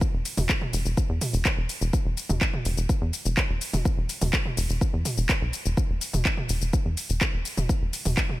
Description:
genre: melodic techno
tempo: 125 BPM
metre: 4/4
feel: straight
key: unclear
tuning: A4 = 440 Hz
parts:
  - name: electronic kick drum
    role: drums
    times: 0.0-8.3 s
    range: none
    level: -25 LUFS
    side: equal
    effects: studio reverb
  - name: house drum kit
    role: drums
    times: 0.0-8.4 s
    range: handclaps, hi-hat, shaker, toms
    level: -28 LUFS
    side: equal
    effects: studio reverb
  - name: tight sequencer bass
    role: bass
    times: 0.1-8.2 s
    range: E1 to E2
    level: -26 LUFS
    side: equal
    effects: sidechain pumping
room: digital ambience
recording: none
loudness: -23 LUFS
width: side -16 dB against mid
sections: 0.0-8.4 A section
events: none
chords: none

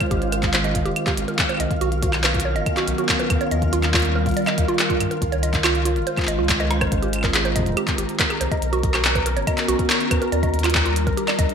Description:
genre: IDM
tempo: 141 BPM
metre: 4/4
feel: straight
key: unclear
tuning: A4 = 439 Hz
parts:
  - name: warbly tape-like pad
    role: sustained chords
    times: 0.0-11.5 s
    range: Eb3 to C5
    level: -25 LUFS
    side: equal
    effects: chorus, built-in reverb, vintage 12-bit sampler grit
  - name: electronic kick drum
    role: drums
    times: 0.0-11.5 s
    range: none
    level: -25 LUFS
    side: left 1 dB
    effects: none
  - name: glitchy drum kit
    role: drums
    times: 0.0-11.5 s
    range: claves, handclaps, hi-hat, rim click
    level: -23 LUFS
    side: equal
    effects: gated reverb, ping-pong delay
  - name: flickering grainy texture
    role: texture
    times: 0.0-11.5 s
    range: F4 to Bb5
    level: -31 LUFS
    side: equal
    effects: built-in reverb
  - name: mallet-like synth pluck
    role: arpeggios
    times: 0.1-11.5 s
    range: F4 to Eb5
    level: -26 LUFS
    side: right 4 dB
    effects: chorus, digital delay
  - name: warm sub bass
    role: bass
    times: 0.1-11.5 s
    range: Eb1 to G2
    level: -24 LUFS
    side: left 1 dB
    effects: none
room: moderate plate reverb, RT60 1.3 s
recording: bright 1980s-style digital production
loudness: -18 LUFS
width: side -7 dB against mid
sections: 0.0-11.5 A section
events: drum fill 6.6-6.9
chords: 0.1 Abmaj9; 1.8 Bmaj9; 3.5 Ebmaj9; 5.2 Dbmaj9; 6.9 Abmaj9; 8.6 Bmaj9; 10.3 Ebmaj9

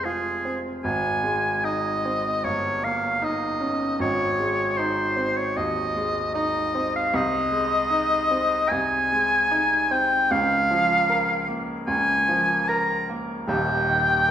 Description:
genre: classical, romantic duo for oboe and grand piano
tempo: 76 BPM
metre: 4/4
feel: rubato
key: Ab major from 7.1 s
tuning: A4 = 440 Hz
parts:
  - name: bright oboe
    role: melody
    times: 0.0-14.3 s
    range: Ab4 to Bb5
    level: -22 LUFS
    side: equal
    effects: none
  - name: bright baby grand piano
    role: accompaniment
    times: 0.0-14.3 s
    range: Eb1 to Bb4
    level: -27 LUFS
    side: right 1 dB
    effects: none
room: wet recital hall reverb, RT60 1.5 s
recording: heard from further back in the room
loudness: -21 LUFS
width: side -10 dB against mid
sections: 0.0-14.3 A section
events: none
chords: 0.0 Fm; 0.8 Ab; 2.4 Eb7/G; 4.0 Ab; 7.1 Ab/C; 10.3 Bbm/Db; 13.5 Eb

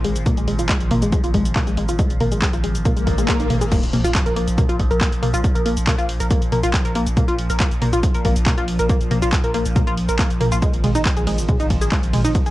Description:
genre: driving peak-time techno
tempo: 139 BPM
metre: 4/4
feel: straight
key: unclear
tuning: A4 = 440 Hz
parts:
  - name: tight sequenced synth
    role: riff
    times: 0.0-12.5 s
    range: Ab3 to Bb4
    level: -23 LUFS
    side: left 1 dB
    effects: chorus, tube saturation, sidechain pumping, cassette tape, analog delay
  - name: saturated sub bass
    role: bass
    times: 0.0-12.5 s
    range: Ab1 to Bb1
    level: -24 LUFS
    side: equal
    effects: sidechain pumping, low-pass filter
  - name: overtone-sweeping drone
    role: drone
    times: 0.0-12.5 s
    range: Bb2 to F3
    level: -29 LUFS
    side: equal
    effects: chorus, built-in reverb, phaser, sidechain pumping, cassette tape
  - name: techno drum kit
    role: drums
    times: 0.0-12.5 s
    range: crash cymbal, handclaps, hi-hat, ride cymbal, shaker, toms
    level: -24 LUFS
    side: equal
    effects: overdrive, sidechain pumping on hats, small room ambience, sidechain pumping on toms, sidechain pumping on perc, sidechain pumping on cymbals
  - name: electronic kick drum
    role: drums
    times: 0.3-12.4 s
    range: none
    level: -20 LUFS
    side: equal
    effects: small room ambience
  - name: swell and impact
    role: sound effects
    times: 3.0-5.4 s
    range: none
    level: -27 LUFS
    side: left 2 dB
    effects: none
room: digital ambience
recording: home recording on cassette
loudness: -16 LUFS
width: side -16 dB against mid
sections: 0.0-3.7 A section; 3.7-12.5 B section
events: filter sweep on synth arpeggio sound 0.0-3.7; swell 3.0-3.7; drop 3.7-12.5; impact 3.7-5.4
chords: 0.0 Ab5; 3.7 Bb5; 10.6 Ab5

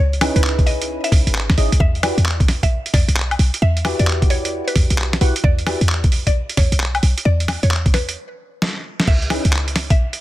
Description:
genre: UK garage, two-step garage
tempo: 132 BPM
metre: 4/4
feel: swing 65% on 16ths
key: unclear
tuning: A4 = 440 Hz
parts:
  - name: mallet-like synth pluck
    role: melody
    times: 0.0-10.1 s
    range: B4 to E5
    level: -27 LUFS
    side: left 1 dB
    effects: chorus, digital delay
  - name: short 808-style bass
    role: bass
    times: 0.0-10.1 s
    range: G#1 to E2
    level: -18 LUFS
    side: equal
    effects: none
  - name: boom bap sampler-style drum kit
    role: drums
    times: 0.1-10.2 s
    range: crash cymbal, handclaps, hi-hat, snare drum, woodblock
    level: -21 LUFS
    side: equal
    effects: soft clipping on snare
  - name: percussive organ stab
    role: stabs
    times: 0.2-5.8, 9.3-9.4 s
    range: C#4 to F#5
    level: -25 LUFS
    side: equal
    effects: analog chorus
  - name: electronic kick drum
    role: drums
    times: 0.6-10.0 s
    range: none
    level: -16 LUFS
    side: equal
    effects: none
room: little or no reverb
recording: dense, heavily limited modern master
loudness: -15 LUFS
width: side -16 dB against mid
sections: 0.0-9.1 A section; 9.1-10.2 B section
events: break 8.2-9.1; drum fill 8.6-9.1; drop 9.1-10.2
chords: 0.0 C#m7; 1.8 Em7; 9.1 C#m7

